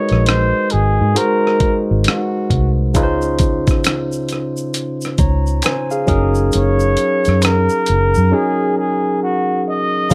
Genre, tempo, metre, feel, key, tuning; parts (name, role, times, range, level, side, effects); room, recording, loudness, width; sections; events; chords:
R&B, neo-soul; 67 BPM; 4/4; swing 62% on 16ths; A4 = 437 Hz
breathy flugelhorn; melody; 0.0-10.1 s; Gb4 to Eb5; -21 LUFS; equal
barky tine electric piano; accompaniment; 0.0-10.1 s; Db3 to Bb5; -21 LUFS; equal; overdrive
vintage muted fingered electric bass; bass; 0.1-8.3 s; Gb1 to Ab2; -19 LUFS; equal
dusty soul sampler-style drum kit; drums; 0.1-10.1 s; hi-hat, kick drum, rim click; -20 LUFS; equal; overdrive
tube shaker and finger snaps; percussion; 2.9-10.1 s; -32 LUFS; equal
rich symphonic string section; sustained chords; 10.1 s; Gb3 to F5; -21 LUFS; equal
studio ambience; dark, warm production; -16 LUFS; mono
0.0-10.1 A section
break 8.3-10.1
0.0 Ab9; 2.9 Dbmaj9; 6.1 Gb69